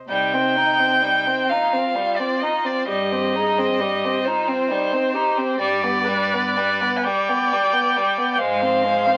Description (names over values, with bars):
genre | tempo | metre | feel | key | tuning
classical, slow romantic movement for string quartet | 39-45 BPM (dotted quarters) | 12/8 | rubato | C minor | A4 = 440 Hz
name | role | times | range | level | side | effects
rich violin | melody | 0.1-9.2 s | C5 to Ab5 | -24 LUFS | equal | none
warm violin | second line | 0.1-9.2 s | G3 to Eb4 | -25 LUFS | equal | none
warm viola | accompaniment | 0.1-9.2 s | Eb4 to D5 | -28 LUFS | equal | none
warm cello | bass | 0.1-9.2 s | G2 to C3 | -36 LUFS | equal | none
room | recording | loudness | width
moderate studio ambience, RT60 0.5 s | very old 78 rpm record, vinyl crackle | -20 LUFS | mono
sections
0.1-9.2 A section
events
none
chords
0.1 Cm; 5.6 G; 8.4 Ab6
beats
| 0.11 1.50 2.89 4.25 | 5.58 7.04 8.39